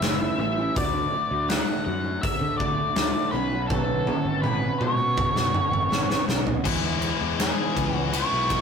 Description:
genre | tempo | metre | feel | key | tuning
quiet-loud alternative rock | 81 BPM | 4/4 | straight | E major | A4 = 441 Hz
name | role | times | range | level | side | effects
octave-fuzz lead guitar | melody | 0.0-8.6 s | G#4 to F#5 | -27 LUFS | left 1 dB | distortion
picked steel-string acoustic guitar | arpeggios | 0.0-8.6 s | E2 to F#4 | -31 LUFS | right 5 dB | none
fuzz fingered electric bass | bass | 0.0-8.6 s | F#1 to D3 | -30 LUFS | equal | overdrive
big rock drum kit | drums | 0.0-8.6 s | crash cymbal, hi-hat, kick drum, ride cymbal, snare drum, toms | -26 LUFS | left 1 dB | none
high-gain distorted guitar | riff | 6.6-8.6 s | E3 to E4 | -26 LUFS | left 6 dB | distortion
room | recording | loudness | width
light reverb | rough rehearsal-room recording, warm saturation | -22 LUFS | side -6 dB against mid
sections
0.0-6.7 A section; 6.7-8.6 B section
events
drum fill 3.7-6.7; lead electric guitar solo 6.7-8.6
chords
0.0 A; 0.8 D; 3.3 Bsus2; 6.7 E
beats
0.02 | 0.76 1.49 2.23 2.97 | 3.70 4.44 5.18 5.92 | 6.66 7.40 8.13

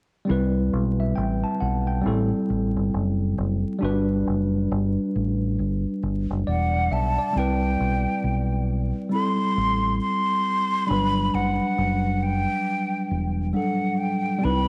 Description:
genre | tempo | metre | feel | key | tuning
lovers rock reggae | 68 BPM | 4/4 | swing 62% on 16ths | unclear | A4 = 438 Hz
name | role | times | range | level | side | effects
tine electric piano | accompaniment | 0.2-14.7 s | F#3 to A5 | -27 LUFS | equal | none
deep dub fingered electric bass | bass | 0.3-14.7 s | E1 to C2 | -27 LUFS | equal | tube saturation
breathy mellow silver concert flute | melody | 6.5-14.7 s | F#5 to C6 | -28 LUFS | equal | tape echo
room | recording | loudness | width
moderate echo chamber reverb, RT60 1.3 s | vinyl crackle | -24 LUFS | mono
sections
0.3-7.3 A section; 7.3-14.7 B section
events
none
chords
0.3 Cmaj7; 2.0 Am7; 3.8 Gmaj7; 7.3 Cmaj7; 9.1 Am7; 10.9 Gmaj7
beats
| 0.28 1.16 2.05 2.93 | 3.81 4.70 5.58 6.46 | 7.35 8.23 9.12 10.00 | 10.88 11.77 12.65 13.54 | 14.42

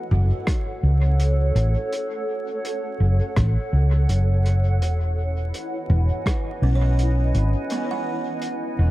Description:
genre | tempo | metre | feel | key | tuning
ambient dub | 83 BPM | 4/4 | swing 59% on 16ths | F# dorian | A4 = 439 Hz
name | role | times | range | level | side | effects
granular cloud pad | sustained chords | 0.0-8.9 s | E4 to G#5 | -29 LUFS | right 1 dB | built-in reverb
buzzing kalimba | arpeggios | 0.0-8.9 s | B3 to F#5 | -31 LUFS | right 3 dB | dub echo
hollow-body short-scale fingered electric bass | bass | 0.1-8.9 s | E1 to C#2 | -18 LUFS | equal | none
warm soul drum kit | drums | 0.1-8.6 s | hi-hat, rim click, toms | -30 LUFS | equal | dub echo
electronic kick drum | drums | 0.5-6.4 s | none | -24 LUFS | equal | overdrive
room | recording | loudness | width
light reverb, studio ambience | dark, warm production, vinyl crackle | -19 LUFS | side -16 dB against mid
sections
0.0-8.9 A section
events
none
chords
0.0 F#m; 4.8 Emaj7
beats
0.47 1.20 | 1.92 2.64 3.37 4.09 | 4.81 5.54 6.26 6.98 | 7.70 8.43

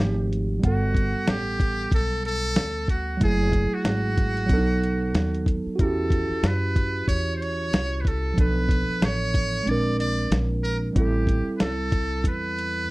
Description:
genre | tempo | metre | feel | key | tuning
hip hop, jazz-hop | 93 BPM | 4/4 | swing 60% on 16ths | unclear | A4 = 444 Hz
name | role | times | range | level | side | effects
trumpet with metal mute | melody | 0.0-12.9 s | F#4 to D5 | -29 LUFS | equal | slapback echo
mellow tine electric piano | accompaniment | 0.0-12.9 s | F3 to F#5 | -27 LUFS | right 2 dB | none
upright bass | bass | 0.0-12.9 s | F#1 to F#2 | -26 LUFS | equal | none
dusty soul sampler-style drum kit | drums | 0.0-12.8 s | hi-hat, kick drum, snare drum | -23 LUFS | equal | none
room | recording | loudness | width
little or no reverb | dry, close 1970s-style studio recording | -21 LUFS | side -21 dB against mid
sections
0.0-12.9 A section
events
none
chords
0.0 F9; 0.6 Gmaj9; 3.2 F#m9; 4.5 B7; 5.8 Em69; 8.4 Bm7b5; 9.7 A#9; 11.0 Am7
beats
| 0.63 1.28 1.92 2.57 | 3.21 3.86 4.50 5.15 | 5.79 6.44 7.09 7.73 | 8.38 9.02 9.67 10.31 | 10.96 11.60 12.25 12.89

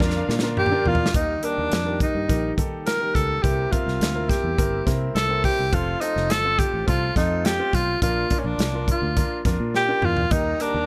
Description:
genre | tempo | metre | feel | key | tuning
uptempo 1960s-style soul | 105 BPM | 4/4 | straight | Bb major | A4 = 441 Hz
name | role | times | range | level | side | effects
warm studio string section | second line | 0.0-1.1, 10.3-10.9 s | D4 to Bb5 | -38 LUFS | equal | none
clear grand piano | accompaniment | 0.0-10.9 s | Bb2 to E5 | -32 LUFS | equal | none
tonewheel organ | sustained chords | 0.0-10.9 s | D3 to E5 | -38 LUFS | equal | none
fingered electric bass | bass | 0.0-10.9 s | F1 to Eb3 | -29 LUFS | equal | none
natural country drum kit | drums | 0.0-10.7 s | hi-hat, kick drum, snare drum, toms | -27 LUFS | equal | none
breathy tenor saxophone | melody | 0.6-10.9 s | Db4 to Bb4 | -26 LUFS | equal | none
room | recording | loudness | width
little or no reverb | none | -22 LUFS | mono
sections
0.0-1.1 A section; 1.1-10.9 B section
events
drum fill 0.0-1.1, 9.7-10.3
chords
0.0 Bb; 1.1 Eb; 3.4 C7; 5.7 F; 8.0 Bb; 10.3 Eb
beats
0.00 0.57 | 1.15 1.72 2.29 2.87 | 3.44 4.01 4.58 5.16 | 5.73 6.30 6.88 7.45 | 8.02 8.60 9.17 9.74 | 10.32

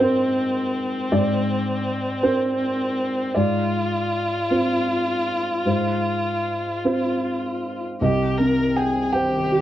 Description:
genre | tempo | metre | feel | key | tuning
neoclassical piano and strings | 52 BPM (dotted quarters) | 6/8 | uneven beats, rubato | unclear | A4 = 440 Hz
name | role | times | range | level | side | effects
muted violin | melody | 0.0-9.6 s | C4 to Bb4 | -24 LUFS | left 1 dB | none
dark upright piano | accompaniment | 0.0-9.6 s | C2 to G5 | -22 LUFS | equal | none
ethereal airy pad | sustained chords | 8.7-9.6 s | Eb3 to G5 | -32 LUFS | left 1 dB | ensemble chorus, built-in reverb, phaser
room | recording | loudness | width
moderate studio reverb, RT60 0.9 s | worn, warbling old tape, cassette tape, warbly pitch drift | -20 LUFS | side -12 dB against mid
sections
0.0-8.0 A section; 8.0-9.6 B section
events
none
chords
0.0 Abadd9; 3.4 Fm/Ab; 8.0 Cm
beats
0.00 | 1.11 2.23 | 3.35 4.50 | 5.66 6.84 | 8.01 9.14

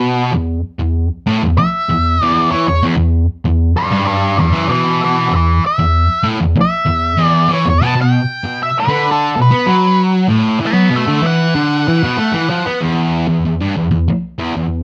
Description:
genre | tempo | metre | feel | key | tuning
rock | 96 BPM | 4/4 | straight | unclear | A4 = 440 Hz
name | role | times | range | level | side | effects
thick fuzz guitar | riff | 0.0-14.8 s | E2 to B3 | -16 LUFS | equal | distortion
octave-fuzz lead guitar | melody | 1.6-12.8 s | A4 to B5 | -18 LUFS | equal | distortion
room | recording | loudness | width
moderate studio reverb, RT60 0.6 s | cassette tape | -14 LUFS | mono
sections
0.0-12.8 A section; 12.8-14.8 B section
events
none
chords
0.0 E5; 7.8 B5; 12.8 N.C.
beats
| 0.34 0.97 1.59 2.21 | 2.84 3.46 4.08 4.70 | 5.32 5.95 6.57 7.19 | 7.81 8.44 9.06 9.68 | 10.30 10.93 11.55 12.18 | 12.80 13.43 14.06 14.69

